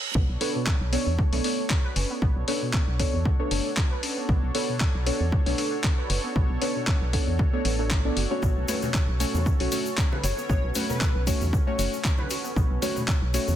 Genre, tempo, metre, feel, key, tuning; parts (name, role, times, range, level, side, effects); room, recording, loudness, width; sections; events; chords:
deep house; 116 BPM; 4/4; swing 54% on 16ths; B minor; A4 = 440 Hz
warm analog pad; sustained chords; 0.1-13.6 s; C#4 to C#5; -37 LUFS; right 1 dB; chorus, tremolo, sidechain pumping
warbly dusty pluck; arpeggios; 0.1-13.0 s; B2 to B4; -36 LUFS; right 2 dB; ensemble chorus, sidechain pumping, digital delay
organ-like FM bass; bass; 0.2-13.6 s; F#1 to E2; -27 LUFS; equal; sidechain pumping
electronic kick drum; drums; 0.2-13.2 s; -24 LUFS; equal; studio ambience
deep mellow chord stab; stabs; 0.4-13.5 s; A3 to D5; -29 LUFS; equal; chorus, sidechain pumping, tape echo
dusty soul sampler-style drum kit; drums; 0.4-13.5 s; handclaps, hi-hat; -31 LUFS; left 2 dB; studio ambience
congas; percussion; 8.4-13.6 s; -39 LUFS; left 2 dB
egg shaker; percussion; 8.4-13.6 s; -38 LUFS; left 5 dB
airy dreamy lead; melody; 10.2-11.0 s; B4 to C#5; -34 LUFS; left 4 dB; chorus, tape echo
light reverb; dense, heavily limited modern master, high-pass filter; -23 LUFS; side -11 dB against mid
0.1-13.6 A section
stop 0.0; drop 0.1-13.6
0.1 Bm9